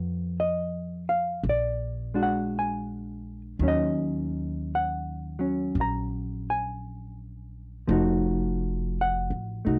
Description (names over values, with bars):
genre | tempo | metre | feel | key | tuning
jazz ballad | 56 BPM | 4/4 | swing 66% on 8ths | unclear | A4 = 439 Hz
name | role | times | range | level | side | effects
hollow-body jazz guitar | accompaniment | 0.0-9.8 s | Eb3 to Bb5 | -30 LUFS | equal | none
upright bass | bass | 0.0-9.8 s | F1 to F2 | -34 LUFS | equal | none
room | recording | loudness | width
light reverb | dry, close 1970s-style studio recording | -28 LUFS | mono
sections
0.0-9.8 A section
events
none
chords
0.0 F7(b5, no3); 1.4 Bbaug7; 3.6 Ebm7; 7.9 F7b9